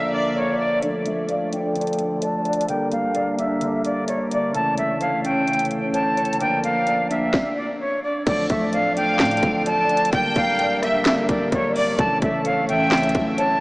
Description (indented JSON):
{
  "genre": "hip hop, trap",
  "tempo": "129 BPM",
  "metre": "4/4",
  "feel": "half-time",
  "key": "D harmonic minor",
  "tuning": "A4 = 439 Hz",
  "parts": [
    { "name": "jazz flute", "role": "melody", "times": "0.0-13.6 s", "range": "C#5 to A5", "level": "-22 LUFS", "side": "equal", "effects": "low-pass filter, diffuse ambient delay" },
    { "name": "clear studio violin section", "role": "second line", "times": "0.0-0.3, 9.0-13.3 s", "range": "D5 to G5", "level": "-28 LUFS", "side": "equal", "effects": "diffuse ambient delay" },
    { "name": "mellow electric guitar", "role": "accompaniment", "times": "0.0-13.6 s", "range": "C#3 to D5", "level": "-26 LUFS", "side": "equal", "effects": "ensemble chorus, low-pass filter" },
    { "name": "pipe organ, flutes", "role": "sustained chords", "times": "0.0-13.6 s", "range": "D2 to Bb4", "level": "-25 LUFS", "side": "equal", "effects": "low-pass filter" },
    { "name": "trap drum kit", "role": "drums", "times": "0.8-13.5 s", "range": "crash cymbal, handclaps, hi-hat, kick drum, rim click, snare drum", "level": "-25 LUFS", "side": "equal", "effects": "none" },
    { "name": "long sustained 808-style bass", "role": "bass", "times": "8.3-13.6 s", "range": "D1 to A2", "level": "-33 LUFS", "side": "equal", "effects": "none" }
  ],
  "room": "wet huge ambient reverb, RT60 3.8 s",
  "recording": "dreamy mix soaked in reverb, small speaker sound",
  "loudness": "-19 LUFS",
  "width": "side -23 dB against mid",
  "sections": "0.8-8.3 A section; 8.3-13.6 B section",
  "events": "break 0.0-0.8; filter sweep 0.8-8.3; stop 7.3-8.3",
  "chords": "0.0 Bb/D; 0.8 Dm; 2.7 Gm/D; 4.5 A/D; 6.4 Bb/D; 8.3 Dm; 10.1 Gm/D; 12.0 A/D",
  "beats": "0.36 | 0.82 1.29 1.76 2.22 | 2.69 3.15 3.62 4.08 | 4.55 5.01 5.48 5.94 | 6.41 6.87 7.34 7.80 | 8.27 8.73 9.20 9.66 | 10.13 10.59 11.06 11.52 | 11.99 12.45 12.92 13.38"
}